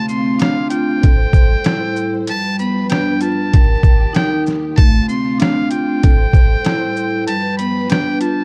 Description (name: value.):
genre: hip hop, boom-bap hip-hop.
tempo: 96 BPM.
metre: 4/4.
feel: swing 55% on 16ths.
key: D dorian.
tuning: A4 = 440 Hz.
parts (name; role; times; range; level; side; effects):
trumpet with metal mute; melody; 0.0-8.4 s; F5 to C6; -25 LUFS; equal; high-pass filter, low-pass filter.
vibraphone with medium hard mallets; accompaniment; 0.0-8.4 s; G3 to Bb4; -21 LUFS; equal; cassette tape, high-pass filter, low-pass filter.
warm studio string section; sustained chords; 0.0-8.4 s; D2 to C5; -31 LUFS; equal; high-pass filter, low-pass filter.
trip hop sampler-style drum kit; drums; 0.1-8.4 s; hi-hat, kick drum, rim click, shaker, snare drum; -15 LUFS; equal; none.
room: little or no reverb.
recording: dark, warm production, vinyl crackle.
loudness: -15 LUFS.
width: mono.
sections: 0.0-8.4 A section.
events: break 0.0-0.4.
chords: 0.0 Dm7; 1.0 Am7; 2.3 G7; 3.5 Eb; 4.8 Dm7; 6.0 Am7; 7.3 G7.